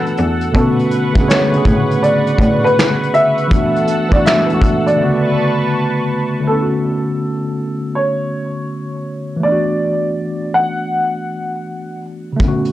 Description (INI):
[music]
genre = lo-fi hip hop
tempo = 81 BPM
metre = 4/4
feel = swing 65% on 16ths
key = B dorian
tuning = A4 = 440 Hz
[part]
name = warm upright piano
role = melody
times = 0.0-12.0 s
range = A4 to F#5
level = -18 LUFS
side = equal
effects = low-pass filter
[part]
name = tine electric piano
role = accompaniment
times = 0.0-12.7 s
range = C#3 to G#4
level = -18 LUFS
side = equal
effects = medium stereo tremolo, cassette tape, low-pass filter
[part]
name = lush unison pad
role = sustained chords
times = 0.0-6.5 s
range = A4 to E6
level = -22 LUFS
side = right 1 dB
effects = chorus, low-pass filter
[part]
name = vintage brush drum kit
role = drums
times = 0.1-5.0, 12.4-12.7 s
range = finger snaps, hi-hat, kick drum, snare drum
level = -16 LUFS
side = equal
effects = vintage 12-bit sampler grit
[part]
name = bright cello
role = bass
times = 0.2-2.7 s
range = E2 to B2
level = -18 LUFS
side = equal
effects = transformer saturation
[sound]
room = moderate studio reverb, RT60 0.6 s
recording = dry, gritty hardware recording, transformer saturation, cassette tape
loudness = -13 LUFS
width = side -14 dB against mid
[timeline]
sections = 0.0-6.5 A section; 6.5-12.7 B section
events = break 5.0-6.5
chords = 0.0 E9sus4; 0.5 Bm9; 3.5 E9sus4; 5.0 Bm9; 9.4 E9sus4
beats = | 0.55 1.29 2.03 2.77 | 3.51 4.25 4.99 5.73 | 6.47 7.21 7.96 8.70 | 9.44 10.18 10.92 11.66 | 12.40